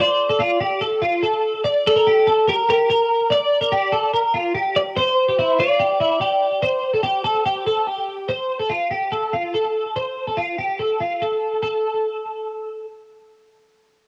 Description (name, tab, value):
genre	indie pop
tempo	144 BPM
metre	4/4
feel	straight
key	F major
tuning	A4 = 436 Hz
part	twelve-string electric guitar	melody	0.0-7.8 s	G4 to D5	-21 LUFS	equal	cassette tape
part	twelve-string electric guitar	arpeggios	0.0-12.8 s	E4 to D5	-22 LUFS	equal	ensemble chorus, cassette tape, analog delay
room	moderate studio reverb, RT60 0.6 s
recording	home recording on cassette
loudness	-20 LUFS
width	mono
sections	0.0-8.3 A section; 8.3-11.6 B section; 11.6-14.1 C section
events	none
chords	0.0 F; 1.6 Gm; 4.8 Csus2; 8.3 F; 11.6 N.C.